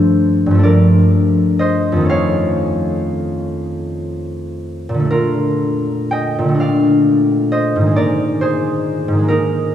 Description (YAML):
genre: classical, solo harp piece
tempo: 39-46 BPM (dotted quarters)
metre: 6/8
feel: rubato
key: unclear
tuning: A4 = 440 Hz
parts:
  - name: concert harp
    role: solo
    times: 0.0-9.7 s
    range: F2 to G5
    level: -13 LUFS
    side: equal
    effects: none
room: wet church reverb, RT60 3.3 s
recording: none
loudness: -13 LUFS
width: side -10 dB against mid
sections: 0.0-5.1 A section; 5.1-9.7 B section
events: none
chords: 0.0 Gm9; 2.1 Faug7; 5.1 Bbmaj7; 8.0 Abadd9